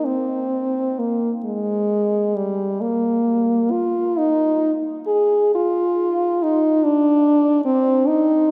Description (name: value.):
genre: classical, free, expressive piece for unaccompanied French horn.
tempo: 42-50 BPM (dotted quarters).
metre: 6/8.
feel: rubato.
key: Eb major.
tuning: A4 = 441 Hz.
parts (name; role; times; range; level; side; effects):
clear French horn; solo; 0.0-8.5 s; G3 to Ab4; -19 LUFS; equal; none.
room: wet cathedral reverb, RT60 4.0 s.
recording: dark, warm production.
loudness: -19 LUFS.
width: mono.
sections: 0.0-8.5 A section.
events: none.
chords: none.